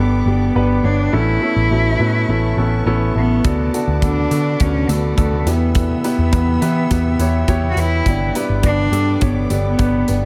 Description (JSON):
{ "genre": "piano-driven pop", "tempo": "104 BPM", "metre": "4/4", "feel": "straight", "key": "D major", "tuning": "A4 = 441 Hz", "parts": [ { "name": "warm cello", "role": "melody", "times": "0.0-10.2 s", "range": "A3 to F#4", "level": "-22 LUFS", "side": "equal", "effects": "none" }, { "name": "warm grand piano", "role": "accompaniment", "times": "0.0-10.3 s", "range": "G2 to D5", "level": "-23 LUFS", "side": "equal", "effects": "analog delay" }, { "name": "warm studio string section", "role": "sustained chords", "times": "0.0-10.3 s", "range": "B4 to E6", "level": "-36 LUFS", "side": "equal", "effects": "none" }, { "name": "vintage muted picked electric bass", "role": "bass", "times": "0.0-10.3 s", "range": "G1 to E3", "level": "-20 LUFS", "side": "equal", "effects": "none" }, { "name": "modern studio drum kit", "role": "drums", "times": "3.4-10.2 s", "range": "hi-hat, kick drum", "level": "-24 LUFS", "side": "equal", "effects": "none" } ], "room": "light reverb, studio reverb", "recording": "echo-heavy mix", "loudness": "-17 LUFS", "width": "mono", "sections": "0.0-10.3 A section", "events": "none", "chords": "0.0 G; 1.1 Aadd9; 3.4 D6; 5.5 Em; 8.1 G" }